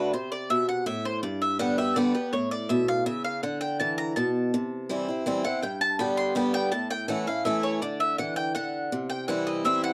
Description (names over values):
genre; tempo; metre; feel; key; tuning
bluegrass; 164 BPM; 3/4; straight; D mixolydian; A4 = 438 Hz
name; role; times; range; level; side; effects
picked swing-style acoustic guitar; accompaniment; 0.0-9.9 s; G2 to G4; -29 LUFS; equal; none
mandolin; stabs; 0.0-9.9 s; B4 to C6; -31 LUFS; equal; none
room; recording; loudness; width
light reverb; dry, close 1970s-style studio recording; -27 LUFS; mono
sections
0.0-9.9 A section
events
mandolin solo 0.0-9.9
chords
0.1 Am69; 1.2 G; 2.3 A; 3.4 D5; 4.5 C; 5.6 G; 6.7 A; 7.8 D; 8.9 C